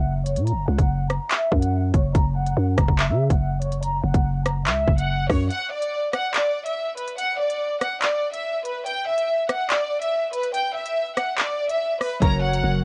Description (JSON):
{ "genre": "hip hop, drill", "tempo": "143 BPM", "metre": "4/4", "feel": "half-time", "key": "unclear", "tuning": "A4 = 440 Hz", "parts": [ { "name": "rich studio violin section", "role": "melody", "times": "0.0-12.8 s", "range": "B4 to A#5", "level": "-27 LUFS", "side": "equal", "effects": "low-pass filter, cassette tape, plate reverb, tape echo" }, { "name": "growling 808-style bass", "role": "bass", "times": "0.0-5.5, 12.2-12.8 s", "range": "F#1 to C#3", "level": "-24 LUFS", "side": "equal", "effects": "none" }, { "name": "drill drum kit", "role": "drums", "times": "0.3-12.6 s", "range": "handclaps, hi-hat, kick drum, rim click", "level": "-24 LUFS", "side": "equal", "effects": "cassette tape" }, { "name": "warbly lo-fi synth keys", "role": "accompaniment", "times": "12.2-12.8 s", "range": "F#3 to C#5", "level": "-27 LUFS", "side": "equal", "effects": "chorus, low-pass filter, cassette tape, plate reverb" } ], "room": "light reverb", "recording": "home recording on cassette", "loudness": "-23 LUFS", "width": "mono", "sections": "0.0-12.8 A section", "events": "filter sweep 0.0-5.5; break 5.5-12.2", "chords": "0.0 N.C.; 12.2 F#" }